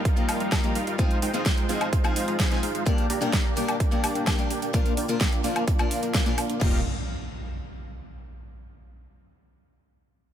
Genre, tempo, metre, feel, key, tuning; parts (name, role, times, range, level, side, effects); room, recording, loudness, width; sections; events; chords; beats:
EDM, festival progressive house; 128 BPM; 4/4; straight; Eb major; A4 = 439 Hz
dense compressed supersaw; riff; 0.0-6.8 s; G3 to Bb5; -29 LUFS; right 1 dB; sidechain pumping, low-pass filter, dub echo
big-room dance drum kit; drums; 0.1-6.7 s; crash cymbal, hi-hat, snare drum, woodblock; -30 LUFS; equal
electronic kick drum; drums; 0.1-6.7 s; -24 LUFS; equal
picked steel-string acoustic guitar; accompaniment; 0.2-6.8 s; G2 to Bb4; -31 LUFS; left 5 dB; sidechain pumping, dub echo
saturated sub bass; bass; 6.6-6.8 s; Eb1; -35 LUFS; equal
impact; sound effects; 6.6-8.5 s; -34 LUFS; right 1 dB
digital ambience; -22 LUFS; side -10 dB against mid
0.0-6.6 A section; 6.6-8.5 B section
filter sweep on supersaw synth 0.0-6.6
0.0 Ebadd9; 1.0 Fm7; 2.9 Gm; 4.7 Bb; 6.6 Ebadd9
0.05 0.52 | 0.99 1.46 1.93 2.40 | 2.86 3.33 3.80 4.27 | 4.74 5.21 5.68 6.15 | 6.61 7.08 7.55 8.02